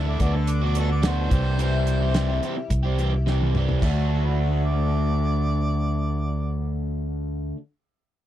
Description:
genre	folk rock and heartland rock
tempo	108 BPM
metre	4/4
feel	straight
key	D mixolydian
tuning	A4 = 438 Hz
part	warm harmonica	second line	0.0-6.8 s	E4 to D5	-33 LUFS	right 1 dB	none
part	picked twelve-string acoustic guitar	accompaniment	0.0-7.6 s	C3 to G4	-35 LUFS	left 5 dB	analog chorus
part	crunchy overdriven guitar	riff	0.0-7.6 s	C3 to G4	-27 LUFS	equal	none
part	fingered electric bass	bass	0.0-7.5 s	C2 to D2	-23 LUFS	equal	none
part	damped 70s drum kit	drums	0.2-4.0 s	crash cymbal, hi-hat, kick drum, snare drum, toms	-26 LUFS	equal	none
room	little or no reverb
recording	dry, close 1970s-style studio recording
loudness	-21 LUFS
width	side -12 dB against mid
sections	0.0-3.8 A section; 3.8-6.1 B section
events	drum fill 3.3-3.8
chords	0.2 Bm/D; 1.3 C; 3.8 D

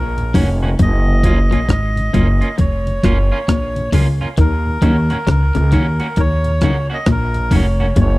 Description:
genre	roots reggae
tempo	67 BPM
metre	4/4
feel	swing 62% on 16ths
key	Eb minor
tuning	A4 = 442 Hz
part	melodica	melody	0.0-8.2 s	Bb4 to Eb5	-23 LUFS	equal	tape echo
part	electric guitar at the edge of break-up	riff	0.0-8.2 s	F2 to Eb3	-22 LUFS	left 5 dB	analog chorus
part	upright bass	bass	0.0-8.2 s	F1 to Eb2	-16 LUFS	equal	none
part	mellow tonewheel organ	accompaniment	0.2-7.9 s	Eb2 to F4	-21 LUFS	left 1 dB	slow rotary speaker
part	breakbeat sampler-style drum kit	drums	0.2-8.2 s	hi-hat, kick drum, rim click	-17 LUFS	equal	none
part	electric guitar at the edge of break-up	accompaniment	0.3-7.9 s	Bb3 to Gb4	-27 LUFS	right 3 dB	spring reverb, tape echo
room	little or no reverb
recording	dry, close 1970s-style studio recording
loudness	-13 LUFS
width	side -19 dB against mid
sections	0.0-8.2 A section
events	none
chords	0.0 Ebm7; 0.8 Gbmaj7; 4.4 Ebm7

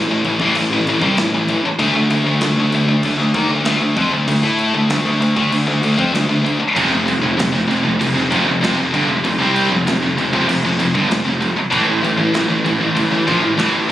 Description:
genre	heavy metal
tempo	97 BPM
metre	4/4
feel	straight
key	unclear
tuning	A4 = 439 Hz
part	heavy high-gain guitar	riff	0.0-13.9 s	F2 to A4	-17 LUFS	left 3 dB	distortion
part	fuzz picked electric bass	bass	0.0-13.9 s	F1 to A2	-19 LUFS	right 1 dB	overdrive
part	modern studio drum kit	drums	0.2-13.7 s	crash cymbal, kick drum, snare drum	-25 LUFS	equal	none
part	scooped high-gain guitar	riff	6.8-13.9 s	F2 to C4	-19 LUFS	right 7 dB	distortion
room	light reverb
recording	recorded on a phone in the room, club reverb, compression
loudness	-14 LUFS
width	side -13 dB against mid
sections	0.0-13.9 A section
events	none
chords	0.0 Am; 1.8 D5; 6.8 F5; 11.7 A5

